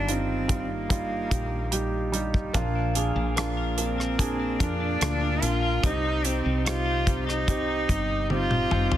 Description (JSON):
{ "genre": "pop ballad", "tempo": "73 BPM", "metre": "4/4", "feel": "straight", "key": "Eb major", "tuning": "A4 = 437 Hz", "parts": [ { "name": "warm cello", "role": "melody", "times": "0.0-9.0 s", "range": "Bb3 to F4", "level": "-29 LUFS", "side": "equal", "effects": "none" }, { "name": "felt-muted upright piano", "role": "accompaniment", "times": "0.0-9.0 s", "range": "G2 to Ab4", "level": "-29 LUFS", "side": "right 2 dB", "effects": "none" }, { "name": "woody fretless electric bass", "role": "bass", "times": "0.0-9.0 s", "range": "G1 to F2", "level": "-30 LUFS", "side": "equal", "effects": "none" }, { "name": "damped 70s drum kit", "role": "drums", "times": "0.1-9.0 s", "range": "hi-hat, kick drum, rim click, toms", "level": "-27 LUFS", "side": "equal", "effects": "soft clipping on snare" }, { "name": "twelve-string electric guitar", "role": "arpeggios", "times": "2.5-9.0 s", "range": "Bb2 to Bb4", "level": "-35 LUFS", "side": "left 10 dB", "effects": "wide subtle chorus" } ], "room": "light reverb, studio reverb", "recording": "dense, heavily limited modern master", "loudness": "-23 LUFS", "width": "side -12 dB against mid", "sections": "0.0-9.0 A section", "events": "drum fill 8.3-9.0", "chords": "0.0 Ebadd9/G; 2.5 Bb; 5.8 Cm" }